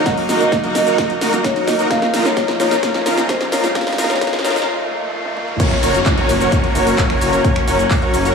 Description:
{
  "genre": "EDM, festival progressive house",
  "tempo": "130 BPM",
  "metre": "4/4",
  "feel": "straight",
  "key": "unclear",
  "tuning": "A4 = 436 Hz",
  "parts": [
    { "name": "marimba with medium mallets", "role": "melody", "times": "0.0-4.7 s", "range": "C5 to Gb5", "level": "-21 LUFS", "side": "left 1 dB", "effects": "dub echo" },
    { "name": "mellow electric guitar", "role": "accompaniment", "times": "0.0-5.6 s", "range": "F3 to Gb4", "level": "-26 LUFS", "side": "right 3 dB", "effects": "vintage 12-bit sampler grit, sidechain pumping, dub echo" },
    { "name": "rich chamber string section", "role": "sustained chords", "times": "0.0-8.3 s", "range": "F3 to Eb4", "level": "-25 LUFS", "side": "equal", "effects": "sidechain pumping" },
    { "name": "dense compressed supersaw", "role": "riff", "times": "0.0-8.3 s", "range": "Eb4 to Db5", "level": "-20 LUFS", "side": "equal", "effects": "sidechain pumping, dub echo" },
    { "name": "riser and downlifter", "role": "sound effects", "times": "1.4-8.3 s", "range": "none", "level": "-26 LUFS", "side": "equal", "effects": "none" },
    { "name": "big-room dance drum kit", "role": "drums", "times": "0.1-8.3 s", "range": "cabasa, crash cymbal, finger snaps, handclaps, hi-hat, snare drum, toms", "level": "-22 LUFS", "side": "equal", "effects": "none" },
    { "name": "electronic kick drum", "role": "drums", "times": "0.1-8.0 s", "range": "none", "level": "-20 LUFS", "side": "equal", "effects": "none" },
    { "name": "wide detuned saw bass", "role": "bass", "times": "0.3-8.3 s", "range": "Gb1 to Bb1", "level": "-25 LUFS", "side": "equal", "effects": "chorus, sidechain pumping" },
    { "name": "dark concert grand piano", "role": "arpeggios", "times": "5.6-8.3 s", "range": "Db5", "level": "-22 LUFS", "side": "right 1 dB", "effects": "sidechain pumping, dub echo" }
  ],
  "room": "moderate lush hall reverb, RT60 1.9 s, digital ambience",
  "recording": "high-pass filter, studio reverb",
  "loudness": "-14 LUFS",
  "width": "side -5 dB against mid",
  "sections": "0.0-5.6 A section; 5.6-8.3 B section",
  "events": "build-up 0.0-5.6; drum fill 0.0-4.7, 5.3-5.6; break 4.7-5.6; drop 5.6-8.3",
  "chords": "0.0 Ebm/Gb; 1.9 Bbm; 5.6 Gb"
}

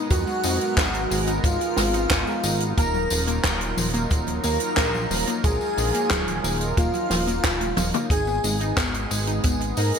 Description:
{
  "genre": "synthwave",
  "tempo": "90 BPM",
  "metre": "4/4",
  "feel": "straight",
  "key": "G# dorian",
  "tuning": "A4 = 440 Hz",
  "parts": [
    { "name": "chorused pulse-width pad", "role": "sustained chords", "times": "0.0-10.0 s", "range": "F#3 to A#4", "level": "-31 LUFS", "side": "right 1 dB", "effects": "sidechain pumping" },
    { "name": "wide unison pluck", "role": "arpeggios", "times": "0.0-9.9 s", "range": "E#3 to D#4", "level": "-30 LUFS", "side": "left 2 dB", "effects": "digital delay" },
    { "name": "wide unison lead", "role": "melody", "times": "0.1-10.0 s", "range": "E#4 to A#4", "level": "-28 LUFS", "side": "equal", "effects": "digital delay" },
    { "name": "airy dreamy lead", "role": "second line", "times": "0.1-10.0 s", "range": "E#5 to A#5", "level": "-32 LUFS", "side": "equal", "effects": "chorus, digital delay" },
    { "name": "chorused synth bass", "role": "bass", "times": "0.1-9.9 s", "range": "D#1 to G#2", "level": "-27 LUFS", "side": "equal", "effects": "tube saturation, sidechain pumping" },
    { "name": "compact cocktail drum kit", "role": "drums", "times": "0.1-10.0 s", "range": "handclaps, hi-hat, snare drum, tambourine, toms", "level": "-27 LUFS", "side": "equal", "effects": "studio reverb" },
    { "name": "kick drum", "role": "drums", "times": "0.1-9.6 s", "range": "none", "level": "-24 LUFS", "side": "equal", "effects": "studio reverb" }
  ],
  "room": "moderate plate reverb, RT60 2.8 s",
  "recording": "bright 1980s-style digital production",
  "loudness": "-20 LUFS",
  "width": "side -7 dB against mid",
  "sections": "0.0-10.0 A section",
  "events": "drum fill 7.6-8.1",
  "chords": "0.0 G#m; 2.8 D#madd9; 8.1 G#m"
}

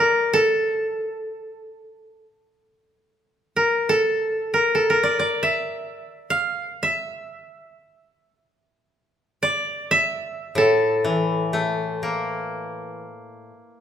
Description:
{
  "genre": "japanese traditional, Japanese chamber music",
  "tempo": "free time",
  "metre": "none",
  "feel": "none",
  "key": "A miyako bushi",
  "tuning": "A4 = 440 Hz",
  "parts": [
    { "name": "koto", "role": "melody", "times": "0.0-12.7 s", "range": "A4 to F5", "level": "-20 LUFS", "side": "equal", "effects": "none" },
    { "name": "koto", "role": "accompaniment", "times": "10.6-13.8 s", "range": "A2 to Bb3", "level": "-24 LUFS", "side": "left 3 dB", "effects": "none" }
  ],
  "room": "light reverb",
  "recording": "minimal, uncompressed stereo recording",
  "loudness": "-20 LUFS",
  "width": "side -9 dB against mid",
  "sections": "0.0-13.3 A section",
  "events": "none",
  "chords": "none"
}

